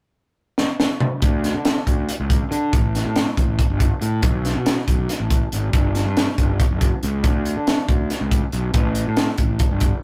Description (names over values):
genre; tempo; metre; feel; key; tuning
math rock and midwest emo; 279 BPM (eighths); 7/8; straight; unclear; A4 = 440 Hz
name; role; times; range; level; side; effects
crisp fusion drum kit; drums; 0.6-9.9 s; hi-hat, kick drum, snare drum, toms; -21 LUFS; equal; none
fuzz fingered electric bass; bass; 1.2-9.9 s; F#1 to D3; -24 LUFS; equal; overdrive
room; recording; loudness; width
light reverb; rough rehearsal-room recording, tube saturation; -20 LUFS; mono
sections
0.0-1.2 A section; 1.2-10.0 B section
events
drum fill 0.6-1.2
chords
none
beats
0.15 0.36 0.58 0.79 1.01 | 1.22 1.44 1.65 1.86 2.08 2.29 2.51 | 2.72 2.94 3.15 3.37 3.58 3.80 4.01 | 4.23 4.44 4.66 4.87 5.09 5.30 5.52 | 5.73 5.95 6.16 6.38 6.59 6.81 7.02 | 7.24 7.45 7.67 7.88 8.10 8.31 8.53 | 8.74 8.96 9.17 9.39 9.60 9.82